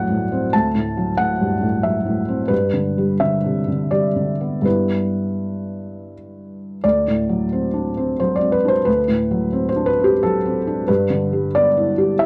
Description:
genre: neoclassical minimalist piano.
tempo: 80-92 BPM.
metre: 3/4.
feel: rubato.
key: unclear.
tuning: A4 = 440 Hz.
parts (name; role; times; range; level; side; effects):
felt-muted upright piano; solo; 0.0-12.3 s; D2 to A5; -20 LUFS; equal; none.
room: moderate small room ambience, RT60 0.5 s.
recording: worn, warbling old tape, cassette tape, warbly pitch drift.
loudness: -19 LUFS.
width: mono.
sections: 0.0-6.8 A section; 6.8-12.3 B section.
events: none.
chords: 0.0 D7; 2.5 G6; 6.8 D7; 10.9 G6.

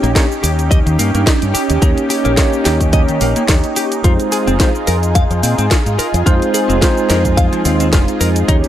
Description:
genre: nu-disco, nu disco.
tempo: 108 BPM.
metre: 4/4.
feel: swing 55% on 16ths.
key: F minor.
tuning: A4 = 441 Hz.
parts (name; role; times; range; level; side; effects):
tine electric piano; accompaniment; 0.0-8.7 s; Ab3 to Db5; -18 LUFS; right 1 dB; medium stereo tremolo, sidechain pumping, tape echo.
lush unison pad; sustained chords; 0.0-8.7 s; Db4 to Ab4; -20 LUFS; right 1 dB; chorus, phaser, sidechain pumping.
direct-recorded clean electric guitar; riff; 0.0-8.6 s; Eb3 to F5; -21 LUFS; left 3 dB; wide subtle chorus, tape echo.
fingered electric bass with an envelope filter; bass; 0.0-8.6 s; F1 to Bb2; -16 LUFS; equal; tube saturation.
house drum kit; drums; 0.0-8.7 s; hi-hat, shaker, snare drum; -20 LUFS; equal; none.
electronic kick drum; drums; 0.2-8.6 s; none; -14 LUFS; equal; none.
room: light reverb.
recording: dry, gritty hardware recording.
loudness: -11 LUFS.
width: side -11 dB against mid.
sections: 0.0-8.7 A section.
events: none.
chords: 0.0 Eb7; 4.0 Fm7.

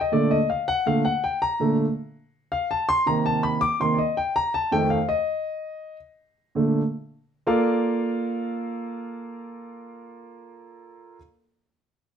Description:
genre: jazz.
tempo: 163 BPM.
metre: 4/4.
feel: straight.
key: Bb major.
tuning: A4 = 440 Hz.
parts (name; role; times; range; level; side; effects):
warm baby grand piano; accompaniment; 0.0-11.2 s; F2 to D6; -22 LUFS; equal; none.
room: wet studio reverb, RT60 0.7 s.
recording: none.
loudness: -22 LUFS.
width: side -8 dB against mid.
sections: 0.0-7.5 A section; 7.5-10.4 B section.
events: grand piano solo 0.0-7.5.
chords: 0.1 Bbmaj7; 3.1 Cm7; 4.5 F7; 6.0 Bbmaj7.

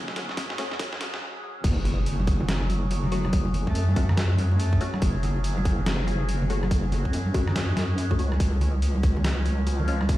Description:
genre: deep dubstep.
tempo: 142 BPM.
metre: 4/4.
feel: swing 62% on 16ths, half-time.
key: F# minor.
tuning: A4 = 438 Hz.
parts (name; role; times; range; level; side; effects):
overtone-sweeping drone; sustained chords; 0.0-10.2 s; C#3 to G#4; -35 LUFS; equal; chorus, built-in reverb, phaser.
deep soft wobble bass; bass; 0.0-10.2 s; F#1 to F#2; -25 LUFS; equal; chorus.
trip hop sampler-style drum kit; drums; 0.1-10.2 s; crash cymbal, hi-hat, rim click, snare drum; -32 LUFS; equal; high-pass filter on snare, studio reverb, high-pass filter on hats, high-pass filter on cymbals.
electronic kick drum; drums; 0.4-10.2 s; none; -24 LUFS; equal; studio reverb.
filtered dub chord stab; stabs; 0.6-9.9 s; G#3 to F#4; -36 LUFS; left 4 dB; phaser, cassette tape, dub echo.
bongos and congas; percussion; 1.6-10.1 s; none; -32 LUFS; right 1 dB; none.
impact; sound effects; 1.6-3.3 s; none; -31 LUFS; equal; none.
rich cello; melody; 3.0-5.1, 9.8-10.2 s; C#3 to A3; -35 LUFS; equal; dub echo.
room: light reverb, digital ambience.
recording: played on a big sound system in a bare room, stone room reverb, high-pass filter.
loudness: -22 LUFS.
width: side -16 dB against mid.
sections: 0.0-1.6 A section; 1.6-10.2 B section.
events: build-up 0.0-1.6; drum fill 0.0-1.2; break 1.2-1.6; drop 1.6-10.2; impact 1.6-3.3.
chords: 0.0 F#5; 1.6 F#m; 8.4 C#5.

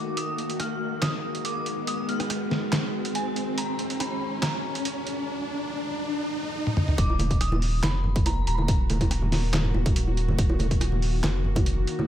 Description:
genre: deep dubstep.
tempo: 141 BPM.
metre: 4/4.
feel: half-time.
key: Eb harmonic minor.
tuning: A4 = 441 Hz.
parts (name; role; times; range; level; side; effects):
dark detuned synth bell; melody; 0.0-10.1 s; Ab5 to F6; -34 LUFS; equal; chorus, phaser, low-pass filter, dub echo.
bowed-like drone; sustained chords; 0.0-12.1 s; Eb3 to Gb4; -33 LUFS; left 1 dB; built-in reverb.
riser; sound effects; 0.0-7.0 s; none; -31 LUFS; equal; none.
trip hop sampler-style drum kit; drums; 0.2-12.0 s; handclaps, hi-hat, rim click, snare drum, toms; -29 LUFS; equal; small room ambience.
soft dub sub bass; bass; 7.0-11.9 s; Eb1 to F1; -25 LUFS; equal; none.
electronic kick drum; drums; 7.0-11.6 s; none; -24 LUFS; equal; small room ambience.
bongos and congas; percussion; 7.1-12.1 s; none; -30 LUFS; right 2 dB; dub echo.
room: light reverb.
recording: none.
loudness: -24 LUFS.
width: side -11 dB against mid.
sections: 0.0-7.0 A section; 7.0-12.1 B section.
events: build-up 0.0-7.0; riser 0.0-7.0; filter sweep on synth bell 0.0-7.0; drum fill 6.7-7.0; drop 7.0-12.1.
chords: 0.0 Ebm.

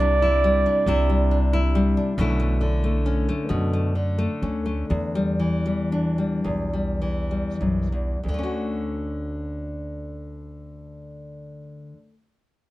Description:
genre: acoustic folk-pop ballad.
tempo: 31-46 BPM (dotted quarters).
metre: 6/8.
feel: straight.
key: D major.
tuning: A4 = 440 Hz.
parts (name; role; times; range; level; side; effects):
mellow flugelhorn; melody; 0.0-1.8 s; D5; -21 LUFS; right 3 dB; none.
nylon-string guitar; accompaniment; 0.0-12.1 s; D2 to F#4; -25 LUFS; left 2 dB; none.
upright bass; bass; 0.0-11.9 s; B1 to F#2; -25 LUFS; equal; none.
room: little or no reverb.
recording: dark, warm production.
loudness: -21 LUFS.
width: side -17 dB against mid.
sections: 0.0-2.2 A section; 2.2-8.2 B section; 8.2-12.2 C section.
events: slowing down 2.2-8.2.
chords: 0.0 Cadd9; 2.2 Bm11; 4.9 Em7; 8.2 Dmaj7.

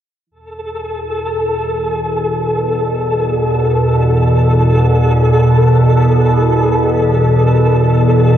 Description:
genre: dark ambient drone.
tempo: free time.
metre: none.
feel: none.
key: unclear.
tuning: A4 = 436 Hz.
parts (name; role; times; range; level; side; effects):
deep dark ambient pad; sustained chords; 1.0-8.4 s; E4 to D5; -28 LUFS; left 1 dB; none.
organ-like drone; drone; 1.4-8.4 s; E2 to B2; -12 LUFS; equal; ensemble chorus, built-in reverb, phaser.
flickering grainy texture; texture; 0.5-8.4 s; A4; -16 LUFS; equal; built-in reverb.
room: wet cathedral reverb, RT60 5.5 s.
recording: worn, warbling old tape, cassette tape, warbly pitch drift.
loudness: -11 LUFS.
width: side -10 dB against mid.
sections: 0.3-8.4 A section.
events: none.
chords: 0.3 E5.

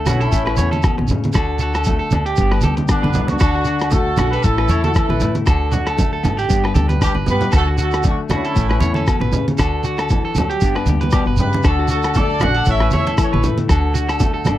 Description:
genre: highlife guitar band.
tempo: 117 BPM.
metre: 4/4.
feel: swing 55% on 16ths.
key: D major.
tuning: A4 = 440 Hz.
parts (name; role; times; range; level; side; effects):
semi-hollow electric guitar; accompaniment; 0.0-14.6 s; G2 to G4; -24 LUFS; left 7 dB; harmonic tremolo.
electric guitar at the edge of break-up; arpeggios; 0.0-14.6 s; F#4 to C#5; -24 LUFS; right 6 dB; none.
upright bass; bass; 0.0-14.6 s; G1 to A2; -20 LUFS; equal; none.
bright horn section; melody; 0.1-13.4 s; B3 to F#5; -21 LUFS; equal; none.
lo-fi sampler-style drum kit; drums; 0.1-14.6 s; hi-hat, kick drum, rim click; -19 LUFS; equal; none.
agogo bells; percussion; 0.1-14.6 s; none; -30 LUFS; left 10 dB; none.
congas; percussion; 0.1-14.6 s; none; -22 LUFS; right 2 dB; none.
shekere; percussion; 0.1-14.6 s; none; -25 LUFS; right 4 dB; none.
room: little or no reverb.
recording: dry, close 1970s-style studio recording.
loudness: -15 LUFS.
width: side -13 dB against mid.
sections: 0.0-14.6 A section.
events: drum fill 7.1-7.5.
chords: 0.3 A; 1.4 D; 2.4 G; 3.4 D; 4.4 A; 5.5 D; 6.5 G; 7.5 D; 8.6 A; 9.6 D; 10.6 G; 11.6 D; 12.7 A; 13.7 D.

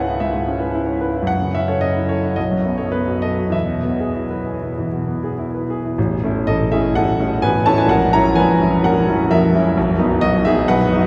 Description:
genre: classical, romantic character piece for solo piano.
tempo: 95-134 BPM.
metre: 4/4.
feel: rubato.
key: E major.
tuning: A4 = 441 Hz.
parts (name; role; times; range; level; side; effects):
warm concert grand piano; solo; 0.0-11.1 s; A0 to A#5; -18 LUFS; equal; none.
room: wet cathedral reverb, RT60 7.0 s.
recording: heard from further back in the room.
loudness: -18 LUFS.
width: mono.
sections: 0.0-6.0 A section; 6.0-11.1 B section.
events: none.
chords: 0.0 C#m7; 1.3 F#m7; 2.4 B5; 3.5 E; 6.0 A; 7.9 F#7/A#; 9.8 B.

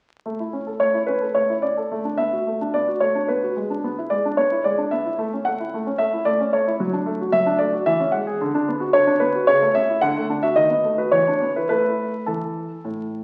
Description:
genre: classical-period piano sonatina.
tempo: 110 BPM.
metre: 3/4.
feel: rubato.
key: A major.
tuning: A4 = 440 Hz.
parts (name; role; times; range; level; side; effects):
warm baby grand piano; solo; 0.3-13.2 s; A2 to F#5; -21 LUFS; equal; none.
room: wet recital hall reverb, RT60 1.3 s.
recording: very old 78 rpm record, vinyl crackle.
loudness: -21 LUFS.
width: mono.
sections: 0.3-13.2 A section.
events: none.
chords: 0.3 A; 1.9 Bm7/A; 3.6 E7/G#; 5.2 A; 6.8 D/F#; 7.9 C#m/E; 8.4 Bm/D; 9.5 A/C#; 10.0 D; 10.6 B7/D#; 11.1 E5; 11.7 A5.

